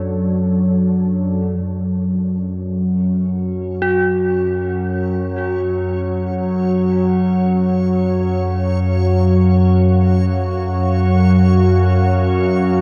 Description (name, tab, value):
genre	dark ambient drone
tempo	free time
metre	none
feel	none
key	F# harmonic minor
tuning	A4 = 437 Hz
part	deep dark ambient pad	sustained chords	0.0-12.8 s	F#3 to E#5	-30 LUFS	equal	chorus, built-in reverb
part	dark detuned synth bell	arpeggios	0.0-12.8 s	F#4	-25 LUFS	equal	chorus, tremolo, diffuse ambient delay
part	analog drone	drone	0.0-12.8 s	F#2 to F#3	-17 LUFS	equal	chorus
part	backwards swelling texture	texture	3.3-12.8 s	C#4 to C#5	-32 LUFS	equal	built-in reverb
room	wet huge ambient reverb, RT60 7.9 s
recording	dark, warm production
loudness	-17 LUFS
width	mono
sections	0.0-1.6 A section; 1.6-12.8 B section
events	fade-in on ambient pad 1.6-12.8; fade-in on synth texture 1.6-12.8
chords	0.0 Dmaj7/F#; 1.6 F#m